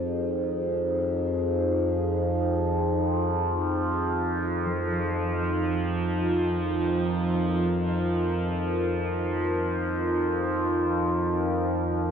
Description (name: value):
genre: dark ambient drone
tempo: free time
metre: none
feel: none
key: F minor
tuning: A4 = 440 Hz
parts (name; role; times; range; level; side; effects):
- dark analog pad; sustained chords; 0.0-12.1 s; Eb4 to Bb4; -29 LUFS; equal; chorus, phaser
- overtone-sweeping drone; drone; 0.0-12.1 s; F2 to F3; -26 LUFS; equal; chorus, built-in reverb
- bronze singing bowl; texture; 0.0-12.1 s; none; barely audible; none; none
- gamelan-type bronze metallophone; arpeggios; 4.7-12.1 s; F3; -40 LUFS; equal; none
room: wet huge ambient reverb, RT60 6.9 s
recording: worn, warbling old tape, cassette tape, warbly pitch drift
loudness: -24 LUFS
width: side -7 dB against mid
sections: 0.0-12.1 A section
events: none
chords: 0.0 Fm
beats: free time